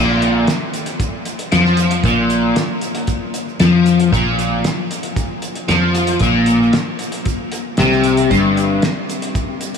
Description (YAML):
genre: psychedelic rock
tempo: 115 BPM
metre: 4/4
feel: straight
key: unclear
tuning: A4 = 439 Hz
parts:
  - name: biting overdriven guitar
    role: riff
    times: 0.0-8.8 s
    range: G2 to F3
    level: -15 LUFS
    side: left 2 dB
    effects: rotary speaker
  - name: fingered electric bass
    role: bass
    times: 0.0-8.8 s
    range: G1 to F2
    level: -20 LUFS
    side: equal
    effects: none
  - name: cloth-damped thuddy drum kit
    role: drums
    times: 0.2-9.8 s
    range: hi-hat, kick drum, snare drum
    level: -22 LUFS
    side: equal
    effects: none
  - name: tube shaker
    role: percussion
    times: 0.5-9.8 s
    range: none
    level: -35 LUFS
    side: right 12 dB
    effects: none
room: moderate huge ambient reverb, RT60 8.3 s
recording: dreamy mix soaked in reverb, studio ambience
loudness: -14 LUFS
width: side -6 dB against mid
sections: 0.0-9.8 A section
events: none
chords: 0.0 Bb5; 8.3 G5